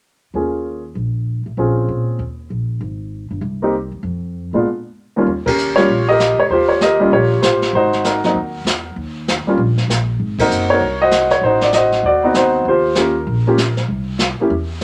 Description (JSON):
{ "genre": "jazz piano trio", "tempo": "195 BPM", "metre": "4/4", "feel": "swing 62% on 8ths", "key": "unclear", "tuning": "A4 = 441 Hz", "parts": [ { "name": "warm baby grand piano", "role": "melody", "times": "0.3-14.5 s", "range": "Eb2 to Eb5", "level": "-17 LUFS", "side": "equal", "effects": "none" }, { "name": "upright bass", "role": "bass", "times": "0.3-14.8 s", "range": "Gb1 to Bb2", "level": "-24 LUFS", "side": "equal", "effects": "none" }, { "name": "jazz brush drum kit", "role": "drums", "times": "5.3-14.8 s", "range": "brushed snare drum, hi-hat, kick drum, ride cymbal, snare drum", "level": "-24 LUFS", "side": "equal", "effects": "none" } ], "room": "moderate club reverb, RT60 0.6 s", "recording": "none", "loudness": "-17 LUFS", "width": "mono", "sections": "0.3-5.3 A section; 5.3-14.8 B section", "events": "band accent 5.4, 10.3", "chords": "0.3 Eb7sus4; 1.6 Bbm7; 2.2 Eb5; 2.8 Ab; 4.0 N.C.; 5.3 Eb9; 7.7 Ab9; 9.0 Eb5; 10.2 Ab9; 11.4 Adim7; 12.7 Eb9; 13.9 C" }